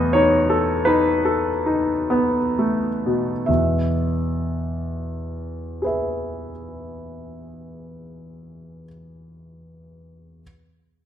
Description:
classical, romantic nocturne for solo piano; 20-30 BPM (dotted quarters); 6/8; rubato; E major; A4 = 440 Hz
clear grand piano; solo; 0.0-10.4 s; E2 to E5; -20 LUFS; equal
wet recital hall reverb, RT60 1.5 s; -19 LUFS; side -10 dB against mid
0.0-3.5 A section; 3.5-8.2 B section
slowing down 0.0-3.5
0.0 B7/E; 3.5 E
0.85 | 3.47 5.81

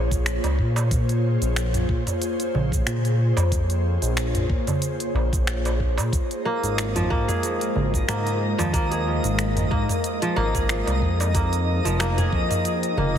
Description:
organic downtempo; 92 BPM; 4/4; swing 55% on 16ths; Bb minor; A4 = 439 Hz
ethereal airy pad; sustained chords; 0.0-13.2 s; F3 to G5; -28 LUFS; left 1 dB; ensemble chorus, built-in reverb, sidechain pumping, shimmer reverb
smooth synth bass; bass; 0.0-13.2 s; F1 to Bb2; -24 LUFS; equal
afro-pop drum kit; drums; 0.1-13.0 s; cabasa, finger snaps, hi-hat, toms; -28 LUFS; equal
electronic kick drum; drums; 0.1-13.2 s; -25 LUFS; equal
darbuka; percussion; 0.4-13.1 s; -32 LUFS; right 3 dB
twinkling granular texture; texture; 6.3-13.2 s; Eb4 to Eb5; -32 LUFS; left 1 dB; built-in reverb, shimmer reverb
kora; arpeggios; 6.5-13.2 s; F3 to Ab4; -26 LUFS; right 1 dB; digital delay, shimmer reverb
moderate concert hall reverb, RT60 2.4 s; heavily compressed radio sound; -20 LUFS; side -9 dB against mid
0.0-13.2 A section
0.0 Bbm7; 6.1 Abadd9; 11.3 Fm7
0.26 | 0.91 1.56 2.22 2.87 | 3.52 4.17 4.83 5.48 | 6.13 6.78 7.43 8.09 | 8.74 9.39 10.04 10.70 | 11.35 12.00 12.65

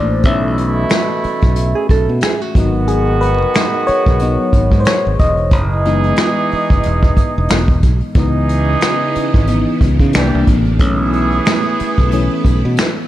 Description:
R&B, neo-soul; 91 BPM; 4/4; swing 57% on 16ths; A4 = 439 Hz
FM electric piano; accompaniment; 0.0-13.1 s; E3 to E5; -18 LUFS; left 2 dB; chorus
modern bright fingered electric bass; bass; 0.0-12.8 s; E1 to C#3; -16 LUFS; equal
clear horn section; stabs; 0.2-12.7 s; B2 to G#4; -20 LUFS; right 4 dB
vintage brush drum kit; drums; 0.2-13.0 s; finger snaps, hi-hat, kick drum, snare drum; -15 LUFS; equal
hollow-body jazz guitar; second line; 1.8-2.7 s; F#4 to A4; -20 LUFS; right 6 dB
string machine, violins; sustained chords; 8.2-13.1 s; C3 to E4; -22 LUFS; right 1 dB; ensemble chorus
light reverb; dark, warm production; -12 LUFS; side -14 dB against mid
0.0-13.1 A section
FM electric piano solo 0.0-13.1
0.2 B7sus4; 2.6 F#13sus4; 8.2 C#m9; 10.1 C9; 10.8 B7sus4
| 0.24 0.90 1.56 2.22 | 2.88 3.54 4.20 4.86 | 5.52 6.18 6.84 7.50 | 8.16 8.82 9.48 10.13 | 10.79 11.45 12.11 12.77

